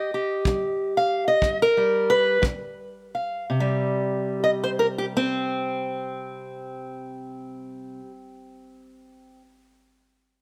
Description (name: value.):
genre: acoustic country blues, solo or duo.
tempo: 55-64 BPM (dotted quarters).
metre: 12/8.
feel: straight.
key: unclear.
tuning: A4 = 438 Hz.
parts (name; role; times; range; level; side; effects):
fingerpicked steel-string acoustic guitar; melody; 0.0-9.4 s; G2 to F5; -25 LUFS; equal; plate reverb.
kick drum; drums; 0.5-2.6 s; none; -28 LUFS; equal; none.
room: moderate studio reverb, RT60 0.7 s.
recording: faint mains hum.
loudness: -24 LUFS.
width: mono.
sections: 0.0-3.5 A section; 3.5-7.8 B section.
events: slowing down 0.0-3.5; steel-string acoustic guitar solo 0.0-3.5.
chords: 0.0 G(#5, no3); 3.5 C5.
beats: 0.44 1.41 2.42 | 3.48 4.57 5.66 6.74.